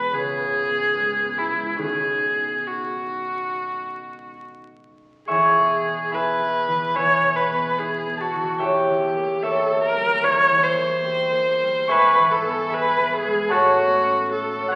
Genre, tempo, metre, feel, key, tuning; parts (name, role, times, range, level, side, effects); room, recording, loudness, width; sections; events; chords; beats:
classical, romantic duo for viola and harp; 71 BPM; 4/4; uneven beats, rubato; E major; A4 = 440 Hz
clear viola; melody; 0.0-14.8 s; E4 to C#5; -23 LUFS; equal
concert harp; accompaniment; 0.0-14.8 s; B1 to C#6; -25 LUFS; equal
wet recital hall reverb, RT60 1.5 s; very old 78 rpm record, vinyl crackle; -21 LUFS; mono
0.0-5.3 A section; 5.3-14.8 B section
0.1 C#5; 1.8 B; 5.3 E; 8.6 Edim7; 11.9 E/G#; 13.5 F#m/A
0.12 0.95 | 1.81 2.67 3.54 4.42 | 5.30 6.13 6.96 7.78 | 8.60 9.43 10.23 11.03 | 11.89 12.71 13.51 14.30